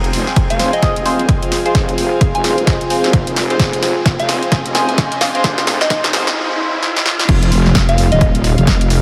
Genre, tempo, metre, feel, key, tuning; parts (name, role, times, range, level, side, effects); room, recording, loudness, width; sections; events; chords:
bass house; 130 BPM; 4/4; swing 60% on 16ths; F minor; A4 = 440 Hz
dark analog pad; sustained chords; 0.2-6.3 s; F4 to C5; -26 LUFS; equal; chorus, sidechain pumping
wobble bass; bass; 0.0-9.0 s; Eb1 to Ab1; -19 LUFS; equal; chorus, overdrive, sidechain pumping, high-pass filter
house drum kit; drums; 0.0-9.0 s; crash cymbal, hi-hat, snare drum; -21 LUFS; equal; high-pass filter on hats, studio reverb, high-pass filter on snare, high-pass filter on cymbals
riser; sound effects; 0.0-7.3 s; -30 LUFS; equal
rich chamber string section; texture; 0.0-9.0 s; C4 to Ab5; -31 LUFS; equal
electronic kick drum; drums; 0.4-8.8 s; -18 LUFS; equal; overdrive, studio reverb
soft synth bell; melody; 0.5-8.4 s; Eb5 to Ab5; -25 LUFS; equal; chorus, diffuse ambient delay
band-passed chord stab; stabs; 0.6-6.3 s; C4 to Eb5; -24 LUFS; equal; phaser, sidechain pumping, diffuse ambient delay
wet huge ambient reverb, RT60 9.1 s; dreamy mix soaked in reverb, high-pass filter; -15 LUFS; mono
0.0-7.3 A section; 7.3-9.0 B section
build-up 0.0-7.3; drum fill 0.0-6.4, 6.8-7.3; filter sweep on synth stab 0.0-7.3; filter sweep 0.0-7.3; drop 7.3-9.0
0.0 Fm; 7.3 N.C.